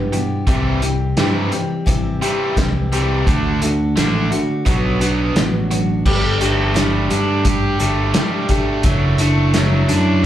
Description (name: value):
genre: folk rock and heartland rock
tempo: 86 BPM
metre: 4/4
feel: straight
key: unclear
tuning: A4 = 442 Hz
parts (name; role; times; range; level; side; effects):
- picked steel-string acoustic guitar; accompaniment; 0.0-10.3 s; B2 to G4; -22 LUFS; left 3 dB; plate reverb, slapback echo
- biting overdriven guitar; riff; 0.0-10.3 s; E2 to G4; -21 LUFS; right 2 dB; slapback echo
- fingered electric bass; bass; 0.0-10.3 s; F#1 to G2; -19 LUFS; equal; none
- vintage drum kit; drums; 0.1-10.1 s; crash cymbal, hi-hat, kick drum, snare drum; -20 LUFS; equal; none
room: light reverb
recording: live gig heard through the venue's PA, club ambience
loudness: -15 LUFS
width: side -12 dB against mid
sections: 0.0-6.1 A section; 6.1-10.3 B section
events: none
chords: 0.5 C; 3.3 D; 4.7 Bm; 6.1 Gsus2; 8.8 Dadd9/F#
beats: | 0.48 1.18 1.87 2.57 | 3.27 3.96 4.66 5.36 | 6.06 6.75 7.45 8.15 | 8.85 9.54 10.24